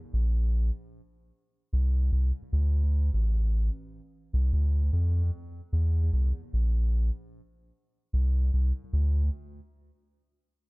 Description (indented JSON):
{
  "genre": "reggae",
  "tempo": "75 BPM",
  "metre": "4/4",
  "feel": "straight",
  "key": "unclear",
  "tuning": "A4 = 435 Hz",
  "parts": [
    { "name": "soft dub sub bass", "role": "solo", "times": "0.1-9.3 s", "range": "A1 to F2", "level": "-25 LUFS", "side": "equal", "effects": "none" }
  ],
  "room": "little or no reverb",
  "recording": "echo-heavy mix",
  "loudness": "-25 LUFS",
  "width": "side -30 dB against mid",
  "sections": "0.0-8.9 A section; 8.9-10.7 B section",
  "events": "none",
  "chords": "none"
}